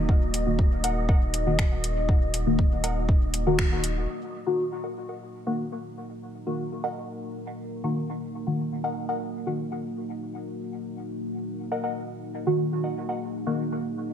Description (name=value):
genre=dub techno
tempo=120 BPM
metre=4/4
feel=straight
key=Eb minor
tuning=A4 = 435 Hz
part: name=deep dark ambient pad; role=sustained chords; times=0.0-14.1 s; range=Bb3 to Eb5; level=-33 LUFS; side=equal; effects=chorus, built-in reverb, sidechain pumping
part: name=warm sub bass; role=bass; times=0.0-4.1 s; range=Eb1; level=-29 LUFS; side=equal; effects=sidechain pumping
part: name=wind-like tuned noise texture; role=texture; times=0.0-4.1 s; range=Eb5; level=-41 LUFS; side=right 4 dB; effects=built-in reverb, sidechain pumping
part: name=electronic kick drum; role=drums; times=0.1-3.7 s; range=none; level=-22 LUFS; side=equal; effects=none
part: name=deep house drum kit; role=drums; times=0.3-3.9 s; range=finger snaps, hi-hat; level=-30 LUFS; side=equal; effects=low-pass filter on hats, low-pass filter on snare
part: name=deep mellow chord stab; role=stabs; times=0.5-13.6 s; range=Eb3 to Gb4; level=-28 LUFS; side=left 1 dB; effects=chorus, phaser, sidechain pumping, dub echo
part: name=filtered dub chord stab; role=riff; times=0.8-13.2 s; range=Bb4 to Gb5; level=-35 LUFS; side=left 1 dB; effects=phaser, sidechain pumping, dub echo
room=moderate echo chamber reverb, RT60 1.5 s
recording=none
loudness=-25 LUFS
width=side -9 dB against mid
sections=0.0-4.1 A section; 4.1-14.1 B section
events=band accent 3.6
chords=0.0 Ebm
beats=| 0.09 0.59 1.09 1.59 | 2.09 2.59 3.09 3.59 | 4.09 4.59 5.09 5.59 | 6.09 6.59 7.09 7.59 | 8.09 8.59 9.09 9.59 | 10.09 10.59 11.09 11.59 | 12.09 12.59 13.09 13.59 | 14.09